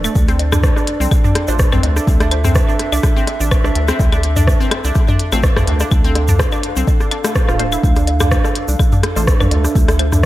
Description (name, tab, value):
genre	minimal techno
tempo	125 BPM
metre	4/4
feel	swing 54% on 16ths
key	D minor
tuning	A4 = 441 Hz
part	resonant blip pluck	riff	0.0-10.2 s	A3 to A4	-24 LUFS	equal	chorus, sidechain pumping, digital delay
part	rubbery square bass	bass	0.0-10.3 s	D1 to D2	-17 LUFS	equal	sidechain pumping
part	booming analog drum machine	percussion	0.0-10.3 s	claves, rim click, toms, woodblock	-20 LUFS	left 1 dB	gated reverb, digital delay
part	tube shaker	percussion	0.0-10.3 s	none	-30 LUFS	right 3 dB	none
part	warbly tape-like pad	texture	0.0-10.3 s	D4 to F5	-23 LUFS	right 2 dB	chorus, built-in reverb, sidechain pumping
part	electronic kick drum	drums	0.2-10.3 s	none	-15 LUFS	equal	none
part	minimal click drum kit	drums	0.3-10.3 s	hi-hat, rim click	-23 LUFS	equal	gated reverb
part	filtered dub chord stab	stabs	1.5-2.4, 5.3-10.1 s	A3 to C5	-28 LUFS	left 2 dB	none
room	light reverb, digital ambience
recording	bright 1980s-style digital production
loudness	-12 LUFS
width	side -15 dB against mid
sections	0.0-10.3 A section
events	none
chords	0.0 Dm7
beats	| 0.15 0.63 1.11 1.59 | 2.07 2.55 3.03 3.51 | 3.99 4.47 4.95 5.43 | 5.91 6.39 6.87 7.35 | 7.83 8.31 8.79 9.27 | 9.75 10.23